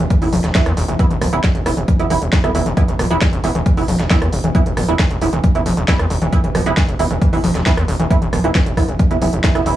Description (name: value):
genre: driving peak-time techno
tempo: 135 BPM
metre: 4/4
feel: straight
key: unclear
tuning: A4 = 438 Hz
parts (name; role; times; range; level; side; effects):
- warbly dusty pluck; riff; 0.0-9.5 s; D3 to F3; -23 LUFS; equal; chorus, overdrive, sidechain pumping, analog delay
- gritty driven synth bass; bass; 0.0-9.7 s; D1 to E2; -19 LUFS; equal; sidechain pumping
- electronic kick drum; drums; 0.1-9.5 s; none; -16 LUFS; equal; overdrive
- techno drum kit; drums; 0.1-9.8 s; hi-hat, rim click, snare drum; -24 LUFS; equal; sidechain pumping on hats, sidechain pumping on cymbals
- filtered dub chord stab; stabs; 0.2-9.8 s; E3 to E4; -22 LUFS; right 3 dB; ensemble chorus, sidechain pumping, tape echo
- swell; sound effects; 9.2-9.8 s; none; -24 LUFS; right 4 dB; none
room: little or no reverb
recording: dry, gritty hardware recording, cassette tape, small room ambience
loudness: -14 LUFS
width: side -13 dB against mid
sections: 0.0-9.8 A section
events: swell 9.2-9.8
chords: 0.0 E5